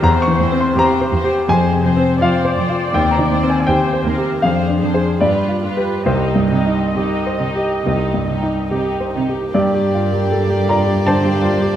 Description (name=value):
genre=classical, romantic movement for piano and orchestra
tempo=66-84 BPM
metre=4/4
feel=rubato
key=C minor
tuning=A4 = 441 Hz
part: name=clear grand piano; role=melody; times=0.0-11.8 s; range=C2 to Db6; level=-16 LUFS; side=left 1 dB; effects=none
part: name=warm symphonic violin section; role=second line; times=0.0-11.8 s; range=Bb3 to C5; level=-24 LUFS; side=left 2 dB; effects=none
part: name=dark symphonic viola section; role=accompaniment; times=0.0-11.8 s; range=G4 to Eb5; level=-25 LUFS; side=right 1 dB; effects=none
part: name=dark chamber cello section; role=bass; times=0.0-11.8 s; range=Eb2 to C3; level=-22 LUFS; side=right 3 dB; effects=none
part: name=warm symphonic violin section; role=melody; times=9.5-11.8 s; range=D5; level=-25 LUFS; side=left 4 dB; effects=none
room=wet scoring stage reverb, RT60 1.9 s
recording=none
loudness=-14 LUFS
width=side -10 dB against mid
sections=0.0-9.5 A section; 9.5-11.8 B section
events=none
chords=0.0 C7/E; 1.5 Fm; 2.9 Cm/Eb; 4.4 Dm7b5/F; 5.2 G7; 6.0 Cm; 9.5 Gm